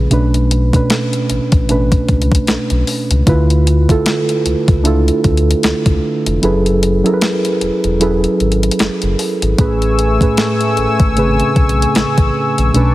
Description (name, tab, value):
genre	contemporary R&B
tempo	76 BPM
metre	4/4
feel	swing 58% on 16ths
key	A major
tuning	A4 = 440 Hz
part	muted felt-like synth keys	accompaniment	0.0-12.9 s	A2 to B4	-15 LUFS	right 1 dB	chorus
part	sub bass with octave	bass	0.0-12.9 s	E1 to D2	-16 LUFS	equal	none
part	crisp 8-bit digital drum machine	drums	0.1-12.9 s	hi-hat, kick drum, snare drum	-16 LUFS	left 1 dB	overdrive
part	warm analog pad	sustained chords	9.6-12.9 s	A3 to E6	-17 LUFS	left 2 dB	chorus, sidechain pumping
room	light reverb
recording	heavily compressed radio sound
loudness	-11 LUFS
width	side -16 dB against mid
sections	0.0-12.9 A section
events	kick muted 6.4-9.6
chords	0.1 Bm9; 3.3 Dm6; 6.4 F#m11; 9.6 Amaj7